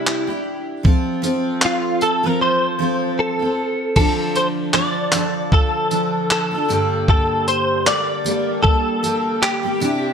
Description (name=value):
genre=acoustic pop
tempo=77 BPM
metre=4/4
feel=swing 55% on 16ths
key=unclear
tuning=A4 = 440 Hz
part: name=direct-recorded clean electric guitar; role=melody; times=0.0-10.1 s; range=E4 to D5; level=-19 LUFS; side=equal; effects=ensemble chorus
part: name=picked steel-string acoustic guitar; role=accompaniment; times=0.0-10.1 s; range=G2 to A4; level=-22 LUFS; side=equal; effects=double-tracked left and right
part: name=dusty soul sampler-style drum kit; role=drums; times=0.1-10.0 s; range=crash cymbal, handclaps, kick drum, tambourine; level=-19 LUFS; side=equal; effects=gated reverb
room=light reverb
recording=bright 1980s-style digital production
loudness=-16 LUFS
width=side -7 dB against mid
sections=0.0-4.0 A section; 4.0-10.1 B section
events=none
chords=0.0 Cadd9; 0.8 F; 4.0 Dm; 6.7 Gmadd9